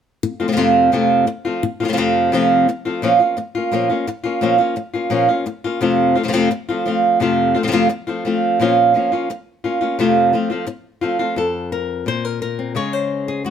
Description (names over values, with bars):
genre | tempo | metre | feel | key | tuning
flamenco | 172 BPM | 4/4 | straight | unclear | A4 = 441 Hz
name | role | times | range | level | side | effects
flamenco guitar | solo | 0.2-13.5 s | F2 to Db5 | -15 LUFS | equal | none
room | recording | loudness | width
light reverb | none | -16 LUFS | side -8 dB against mid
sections
0.2-11.4 A section; 11.4-13.5 B section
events
none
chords
0.2 F; 3.0 Bbm; 5.8 F; 8.6 Bbm; 10.0 F; 11.4 Fsus4; 12.8 Db5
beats
| 0.23 0.58 0.93 1.28 | 1.63 1.98 2.33 2.68 | 3.03 3.38 3.73 4.08 | 4.43 4.77 5.12 5.47 | 5.82 6.17 6.52 6.86 | 7.21 7.56 7.91 8.25 | 8.60 8.95 9.29 9.64 | 9.99 10.34 10.68 11.03 | 11.38 11.72 12.07 12.41 | 12.76 13.11 13.45